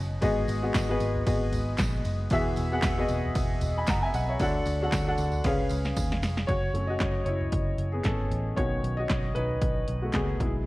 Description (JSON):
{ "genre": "piano-driven pop", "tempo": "115 BPM", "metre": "4/4", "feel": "swing 56% on 16ths", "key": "B mixolydian from 6.5 s", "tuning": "A4 = 439 Hz", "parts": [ { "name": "warm upright piano", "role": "accompaniment", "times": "0.0-10.7 s", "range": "G#2 to B5", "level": "-29 LUFS", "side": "left 1 dB", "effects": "none" }, { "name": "vintage muted picked electric bass", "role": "bass", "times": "0.0-10.7 s", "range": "E1 to D#2", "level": "-30 LUFS", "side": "equal", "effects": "none" }, { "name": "house drum kit", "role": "drums", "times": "0.2-10.5 s", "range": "handclaps, hi-hat, kick drum, ride cymbal, snare drum, toms", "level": "-30 LUFS", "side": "equal", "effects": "none" }, { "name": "tambourine", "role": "percussion", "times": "0.2-6.4 s", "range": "none", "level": "-46 LUFS", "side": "right 5 dB", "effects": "none" } ], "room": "light reverb", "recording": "worn, warbling old tape, cassette tape, warbly pitch drift", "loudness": "-25 LUFS", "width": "side -19 dB against mid", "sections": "0.0-6.5 A section; 6.5-10.7 B section", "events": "drum fill 5.4-6.5; upright piano solo 6.5-10.7", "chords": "0.2 G#m7; 2.3 Eadd9; 4.4 D; 5.4 C#7; 6.5 F#m; 8.6 Badd9", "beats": "| 0.23 0.75 1.27 1.79 | 2.31 2.83 3.36 3.88 | 4.40 4.92 5.44 5.96 | 6.49 7.01 7.53 8.05 | 8.57 9.10 9.62 10.14 | 10.66" }